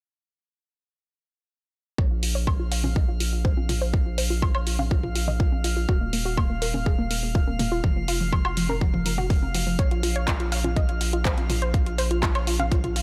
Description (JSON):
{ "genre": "progressive house", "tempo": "123 BPM", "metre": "4/4", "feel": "straight", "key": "unclear", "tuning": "A4 = 440 Hz", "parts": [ { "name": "unison pluck", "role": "arpeggios", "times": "2.0-13.0 s", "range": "F3 to F5", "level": "-32 LUFS", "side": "equal", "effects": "sidechain pumping, tape echo" }, { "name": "saturated sub bass", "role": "bass", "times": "2.0-13.0 s", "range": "Eb1 to Bb1", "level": "-29 LUFS", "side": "equal", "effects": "sidechain pumping" }, { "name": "electronic kick drum", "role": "drums", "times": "2.0-12.8 s", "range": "none", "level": "-26 LUFS", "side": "equal", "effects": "none" }, { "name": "drifting glass-harmonics texture", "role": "texture", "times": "2.3-13.0 s", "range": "F5 to F6", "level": "-39 LUFS", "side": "equal", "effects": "chorus, built-in reverb, sidechain pumping" }, { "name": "pop drum kit", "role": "drums", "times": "2.2-13.0 s", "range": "handclaps, hi-hat, woodblock", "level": "-32 LUFS", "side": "equal", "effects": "none" }, { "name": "electronic toms and congas", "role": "percussion", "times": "2.8-12.9 s", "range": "none", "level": "-35 LUFS", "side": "equal", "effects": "sidechain pumping on toms, sidechain pumping on perc" } ], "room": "little or no reverb", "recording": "none", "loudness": "-24 LUFS", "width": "mono", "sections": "2.0-13.0 A section", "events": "filter sweep on synth pluck 2.0-13.0", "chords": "2.0 Bb5; 5.9 Eb5; 7.8 N.C.; 9.8 Bb5" }